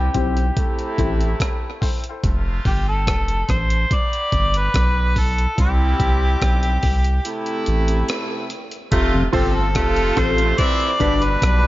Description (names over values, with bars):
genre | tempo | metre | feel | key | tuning
dub reggae | 72 BPM | 4/4 | straight | unclear | A4 = 440 Hz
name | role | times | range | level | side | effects
mellow harmonica | melody | 0.0-11.7 s | G4 to D5 | -23 LUFS | left 1 dB | low-pass filter, tape echo
warm horn section | second line | 0.0-11.7 s | B2 to A4 | -25 LUFS | right 1 dB | high-pass filter, tape echo
soft dub sub bass | bass | 0.0-11.7 s | F1 to C2 | -20 LUFS | equal | none
warm upright piano | stabs | 0.1-2.9, 9.3-11.2 s | C4 to D5 | -27 LUFS | left 6 dB | high-pass filter, low-pass filter, tape echo
breakbeat sampler-style drum kit | drums | 0.1-11.6 s | hi-hat, kick drum, rim click | -22 LUFS | equal | none
mellow tonewheel organ | accompaniment | 9.1-9.2 s | F2 to C3 | -24 LUFS | left 2 dB | chorus vibrato, slow rotary speaker, tape echo
semi-hollow electric guitar | accompaniment | 9.3-11.3 s | D4 to C5 | -28 LUFS | right 5 dB | none
room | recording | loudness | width
small room ambience | echo-heavy mix, nothing above 7.5 kHz | -17 LUFS | side -16 dB against mid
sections
0.0-8.9 A section; 8.9-11.7 B section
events
break 0.0-8.9; filter sweep 0.0-8.9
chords
0.0 C; 0.6 Am; 2.2 F; 3.9 G; 5.6 C; 7.2 Am; 8.9 F; 10.6 G